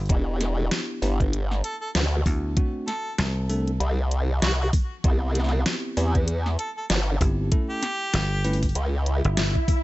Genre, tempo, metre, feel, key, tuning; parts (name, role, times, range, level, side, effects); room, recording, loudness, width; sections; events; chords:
glitch hop; 97 BPM; 4/4; swing 59% on 16ths; E minor; A4 = 440 Hz
dry thumbed slap bass; bass; 0.0-9.5 s; G1 to D2; -24 LUFS; equal
pop drum kit; drums; 0.0-9.8 s; hi-hat, snare drum; -28 LUFS; equal; overdrive
bell-like tine electric piano; stabs; 0.1-8.7 s; A3 to B4; -32 LUFS; equal; sidechain pumping, ping-pong delay
formant-sweep wobble bass; bass; 0.1-9.2 s; E1 to E2; -23 LUFS; equal; chorus, overdrive
electronic kick drum; drums; 0.1-9.8 s; -22 LUFS; equal; overdrive
clear harmonica; melody; 1.6-8.6 s; F#4 to A4; -33 LUFS; equal; ping-pong delay
swell; sound effects; 9.0-9.8 s; -31 LUFS; equal
little or no reverb; nothing above 7.9 kHz; -22 LUFS; side -18 dB against mid
0.0-9.8 A section
swell 9.0-9.8
0.1 Em7; 2.6 D7(no3); 5.0 Cmaj7; 7.5 A